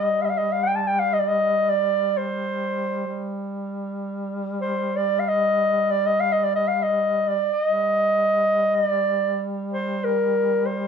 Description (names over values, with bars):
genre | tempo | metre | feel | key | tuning
Turkish makam ensemble | free time | none | none | G makam ussak | A4 = 444 Hz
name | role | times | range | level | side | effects
mellow clarinet | melody | 0.0-10.9 s | Bb4 to A5-29c | -20 LUFS | equal | plate reverb
mellow duduk | drone | 0.0-10.9 s | G3 | -28 LUFS | equal | none
room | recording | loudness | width
wet small room reverb, RT60 0.5 s | heard from further back in the room | -20 LUFS | side -6 dB against mid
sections
0.0-10.9 A section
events
none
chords
none